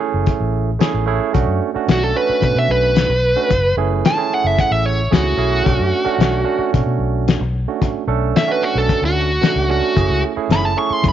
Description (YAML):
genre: straight-eighth soul blues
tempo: 111 BPM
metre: 4/4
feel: straight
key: unclear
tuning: A4 = 442 Hz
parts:
  - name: barky tine electric piano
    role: accompaniment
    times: 0.0-11.1 s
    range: A3 to A4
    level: -21 LUFS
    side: right 10 dB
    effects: none
  - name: vintage muted fingered electric bass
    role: bass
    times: 0.1-11.1 s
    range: F#1 to B2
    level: -20 LUFS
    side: left 1 dB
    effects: none
  - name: cloth-damped thuddy drum kit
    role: drums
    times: 0.3-11.1 s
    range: hi-hat, kick drum, snare drum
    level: -18 LUFS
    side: left 4 dB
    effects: none
  - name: dark smooth lead guitar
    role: melody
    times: 1.9-11.1 s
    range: F#4 to C#6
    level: -18 LUFS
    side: right 1 dB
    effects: overdrive, slapback echo
room: moderate spring reverb, RT60 1.5 s, studio reverb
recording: 1960s-style stereo, nothing above 7.6 kHz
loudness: -14 LUFS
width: side -10 dB against mid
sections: 0.0-11.1 A section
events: none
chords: 0.0 F#m7 (rootless); 1.3 Bm7; 3.5 F#m7; 5.7 Bm7; 10.0 F#m7